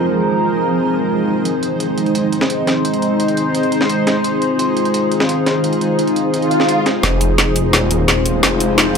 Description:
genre	dark technical drum and bass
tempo	172 BPM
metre	4/4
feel	straight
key	F minor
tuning	A4 = 440 Hz
part	sweeping resonant pad	sustained chords	0.0-9.0 s	Ab3 to C5	-18 LUFS	equal	chorus
part	granular cloud pad	texture	0.0-9.0 s	F3 to C5	-19 LUFS	left 1 dB	built-in reverb
part	breakbeat sampler-style drum kit	drums	1.5-6.9 s	hi-hat, snare drum	-21 LUFS	right 1 dB	high-pass filter on hats, high-pass filter on snare
part	swell and riser	sound effects	6.4-9.0 s	none	-22 LUFS	right 1 dB	none
part	snarling distorted saw bass	bass	7.0-9.0 s	Eb1 to F1	-17 LUFS	equal	distortion
part	drum and bass drum kit	drums	7.0-9.0 s	hi-hat, snare drum	-15 LUFS	equal	overdrive, low-pass filter on cymbals, low-pass filter on snare, low-pass filter on hats
room	moderate digital room reverb, RT60 1.2 s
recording	none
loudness	-14 LUFS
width	side -6 dB against mid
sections	0.0-7.0 A section; 7.0-9.0 B section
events	swell 6.4-7.0; build-up 7.0-9.0; drum fill 7.0-9.0; filter sweep on analog synth pad 7.0-9.0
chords	0.0 Fm; 1.5 Ab; 7.0 Fm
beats	| 0.06 0.41 0.76 1.10 | 1.45 1.80 2.15 2.50 | 2.85 3.20 3.55 3.90 | 4.24 4.59 4.94 5.29 | 5.64 5.99 6.34 6.68 | 7.03 7.38 7.73 8.08 | 8.43 8.78

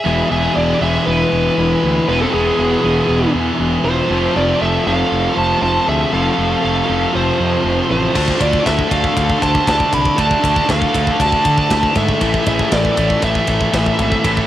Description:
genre	heavy metal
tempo	118 BPM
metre	4/4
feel	straight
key	E phrygian dominant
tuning	A4 = 441 Hz
part	high-gain lead guitar	melody	0.0-14.5 s	G#4 to B5	-18 LUFS	right 1 dB	distortion, cassette tape
part	high-gain lead guitar	second line	0.0-14.5 s	B3 to D5	-24 LUFS	equal	distortion, cassette tape, analog delay
part	heavy high-gain guitar	riff	0.0-14.5 s	E2 to D4	-23 LUFS	right 7 dB	distortion, cassette tape
part	overdriven electric guitar	riff	0.0-14.5 s	E2 to D4	-21 LUFS	left 1 dB	cassette tape
part	high-gain distorted guitar	riff	0.1-14.5 s	A2 to A3	-24 LUFS	left 9 dB	distortion, cassette tape
part	fuzz fingered electric bass	bass	0.1-14.4 s	E1 to D3	-20 LUFS	equal	overdrive
part	tight metal drum kit	drums	8.2-14.5 s	crash cymbal, kick drum, ride cymbal, snare drum	-20 LUFS	equal	none
room	small room ambience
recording	home recording on cassette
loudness	-13 LUFS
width	side -12 dB against mid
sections	0.1-14.5 A section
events	none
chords	0.1 E; 4.1 F; 8.2 Dm; 12.2 A5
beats	| 0.05 0.56 1.07 1.57 | 2.08 2.58 3.09 3.60 | 4.10 4.61 5.12 5.62 | 6.13 6.64 7.14 7.65 | 8.15 8.66 9.17 9.68 | 10.18 10.69 11.20 11.70 | 12.21 12.72 13.23 13.73 | 14.24

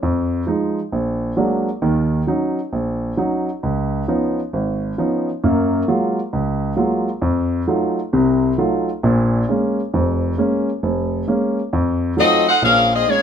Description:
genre	jazz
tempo	133 BPM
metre	4/4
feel	swing 65% on 8ths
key	Bb minor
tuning	A4 = 440 Hz
part	warm grand piano	accompaniment	0.0-13.2 s	F1 to F4	-17 LUFS	right 1 dB	none
part	warm saxophone section	melody	12.2-13.2 s	Bb3 to Gb5	-13 LUFS	left 2 dB	none
room	moderate club reverb, RT60 0.6 s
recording	minimal, uncompressed stereo recording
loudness	-16 LUFS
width	side -8 dB against mid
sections	0.0-12.6 A section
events	none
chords	0.0 Fm7; 0.9 Bb7b13; 1.8 Ebm7; 3.6 Db9; 5.4 Gbmaj9; 7.2 F7b9; 9.0 Bbm7; 11.7 F7b9; 12.6 Bbm7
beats	| 0.02 0.47 0.92 1.37 | 1.82 2.27 2.72 3.17 | 3.62 4.07 4.52 4.97 | 5.42 5.87 6.32 6.77 | 7.22 7.67 8.12 8.57 | 9.02 9.47 9.92 10.37 | 10.82 11.27 11.72 12.17 | 12.62 13.07

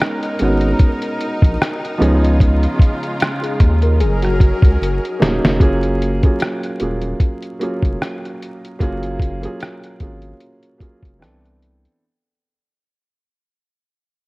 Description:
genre	lo-fi hip hop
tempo	75 BPM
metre	4/4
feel	swing 56% on 16ths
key	F# major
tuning	A4 = 440 Hz
part	warm upright piano	accompaniment	0.0-12.0 s	E3 to A#4	-21 LUFS	right 1 dB	cassette tape
part	clear studio string section	sustained chords	0.0-5.6 s	C#3 to A#4	-25 LUFS	equal	none
part	lo-fi sampler-style drum kit	drums	0.0-12.0 s	hi-hat, kick drum, rim click, snare drum	-15 LUFS	equal	none
part	saturated sub bass	bass	0.4-11.9 s	D#1 to D#2	-18 LUFS	equal	none
part	mellow tine electric piano	second line	3.4-5.4 s	F#4 to A#4	-23 LUFS	left 2 dB	medium stereo tremolo, tape echo
room	light reverb, digital ambience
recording	dark, warm production, vinyl crackle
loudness	-14 LUFS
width	side -23 dB against mid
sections	0.0-5.6 A section; 5.6-12.0 B section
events	drum fill 4.8-5.6; fade-out 5.6-12.0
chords	0.0 Bmaj13; 2.0 C#9; 4.0 F#69; 11.2 Cmaj13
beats	0.00 0.80 1.60 | 2.40 3.20 4.00 4.80 | 5.60 6.40 7.20 8.00 | 8.80 9.60 10.40 11.20

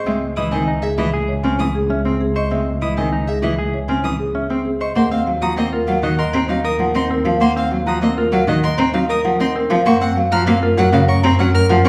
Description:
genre	classical, minimalist pattern music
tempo	98 BPM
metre	4/4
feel	straight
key	unclear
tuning	A4 = 440 Hz
part	marimba with medium mallets	melody	0.0-11.9 s	Ab4 to Bb5	-23 LUFS	equal	none
part	semi-hollow electric guitar	arpeggios	0.0-11.9 s	C4 to C5	-27 LUFS	equal	none
part	warm violin	arpeggios	0.0-11.9 s	Eb5 to F6	-29 LUFS	equal	none
part	rich cello	accompaniment	0.1-11.9 s	Db3 to C4	-22 LUFS	equal	none
part	warm double bass	bass	0.1-11.9 s	Db2 to Gb2	-25 LUFS	equal	none
room	wet large studio reverb, RT60 1.2 s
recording	heard from further back in the room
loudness	-18 LUFS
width	mono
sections	0.0-5.0 A section; 5.0-11.9 B section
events	none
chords	0.1 Dbmadd9; 5.0 Ebmadd9; 9.9 Gbmaj7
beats	| 0.06 0.68 1.29 1.90 | 2.51 3.12 3.74 4.35 | 4.96 5.57 6.18 6.80 | 7.41 8.02 8.63 9.25 | 9.86 10.47 11.08 11.70

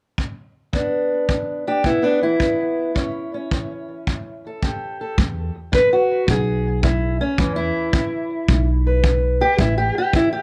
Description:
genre	acoustic country blues, solo or duo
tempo	108 BPM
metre	4/4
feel	swing 68% on 8ths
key	unclear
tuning	A4 = 441 Hz
part	kick drum	drums	0.2-10.3 s	none	-24 LUFS	equal	none
part	fingerpicked steel-string acoustic guitar	melody	0.7-10.4 s	E2 to B4	-22 LUFS	equal	plate reverb, tape echo
part	upright bass	bass	5.2-9.9 s	A1 to E2	-23 LUFS	equal	none
room	light reverb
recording	close, detailed microphones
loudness	-20 LUFS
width	mono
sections	0.7-5.2 A section; 5.2-10.4 B section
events	steel-string acoustic guitar solo 5.2-10.4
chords	0.0 N.C.; 0.7 E5; 3.0 A7; 5.2 E5; 9.6 A5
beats	0.18 | 0.74 1.29 1.85 2.40 | 2.96 3.51 4.07 4.62 | 5.17 5.72 6.28 6.83 | 7.38 7.93 8.48 9.03 | 9.58 10.13

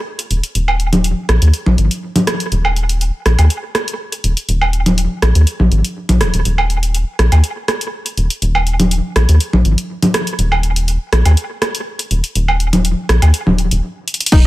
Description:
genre	minimal techno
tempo	122 BPM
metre	4/4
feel	straight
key	unclear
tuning	A4 = 439 Hz
part	punchy analog drum machine	drums	0.2-14.4 s	crash cymbal, hi-hat	-21 LUFS	left 1 dB	none
part	rubbery square bass	bass	0.3-14.5 s	Eb1 to Eb2	-13 LUFS	equal	sidechain pumping
part	electronic woodblock, congas and rim click	percussion	0.7-13.6 s	none	-17 LUFS	right 1 dB	analog delay
part	string-like resonator pluck	riff	14.3-14.4 s	Eb4	-18 LUFS	left 3 dB	chorus, sidechain pumping
part	electronic kick drum	drums	14.3-14.4 s	none	-7 LUFS	equal	none
room	little or no reverb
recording	echo-heavy mix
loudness	-13 LUFS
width	side -17 dB against mid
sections	0.0-14.3 A section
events	stop 13.8-14.3; drum fill 14.1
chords	0.0 Eb5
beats	0.06 | 0.55 1.04 1.53 2.03 | 2.52 3.01 3.50 3.99 | 4.49 4.98 5.47 5.96 | 6.45 6.95 7.44 7.93 | 8.42 8.91 9.40 9.90 | 10.39 10.88 11.37 11.86 | 12.36 12.85 13.34 13.83 | 14.32

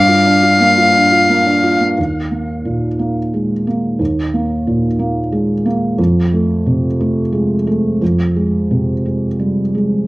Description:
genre	neoclassical piano and strings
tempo	89 BPM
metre	3/4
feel	rubato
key	unclear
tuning	A4 = 440 Hz
part	warm violin	melody	0.0-1.8 s	F5	-12 LUFS	left 2 dB	cassette tape, analog delay
part	felt-muted upright piano	accompaniment	0.0-10.1 s	Eb2 to F4	-14 LUFS	right 1 dB	cassette tape
room	moderate spring reverb, RT60 1.2 s, small room ambience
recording	home recording on cassette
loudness	-12 LUFS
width	side -20 dB against mid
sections	0.0-2.0 A section; 2.0-10.1 B section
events	none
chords	0.0 Gm7; 2.0 Ebsus4; 6.0 F; 8.0 Fm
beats	0.60 1.29 | 1.98 2.65 3.33 | 4.00 4.66 5.32 | 5.98 6.65 7.32 | 8.01 8.71 9.40

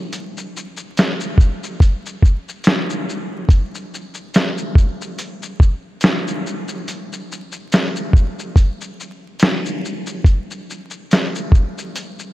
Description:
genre	hip hop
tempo	71 BPM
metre	4/4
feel	swing 56% on 16ths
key	none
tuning	none
part	lo-fi sampler-style drum kit	drums	0.1-12.3 s	hi-hat, kick drum, shaker, snare drum	-16 LUFS	equal	none
room	moderate plate reverb, RT60 3.6 s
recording	vinyl crackle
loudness	-16 LUFS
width	side -16 dB against mid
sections	0.0-12.3 A section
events	none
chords	none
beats	| 0.10 0.95 1.80 2.64 | 3.49 4.33 5.18 6.02 | 6.87 7.71 8.56 9.40 | 10.25 11.09 11.94

